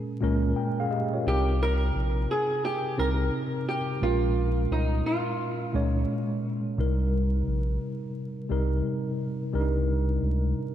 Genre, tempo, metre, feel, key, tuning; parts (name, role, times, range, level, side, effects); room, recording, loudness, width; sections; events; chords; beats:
lo-fi hip hop; 87 BPM; 4/4; swing 66% on 16ths; C phrygian; A4 = 444 Hz
tine electric piano; accompaniment; 0.0-10.7 s; Bb2 to G5; -28 LUFS; equal; medium stereo tremolo, cassette tape, low-pass filter
warm sub bass; bass; 0.2-10.5 s; Bb1 to Db2; -26 LUFS; equal
archtop guitar, miked and amplified; melody; 1.3-6.1 s; Eb4 to Bb4; -29 LUFS; right 1 dB; lush chorus, low-pass filter, analog delay
moderate lush hall reverb, RT60 2.9 s; dreamy mix soaked in reverb, vinyl crackle; -25 LUFS; side -11 dB against mid
0.0-10.7 A section
0.0 Bbm7; 1.3 Cm7; 4.0 Bbm7; 6.8 Cm7
0.57 | 1.26 1.95 2.64 3.33 | 4.02 4.71 5.39 6.08 | 6.78 7.46 8.15 8.84 | 9.53 10.22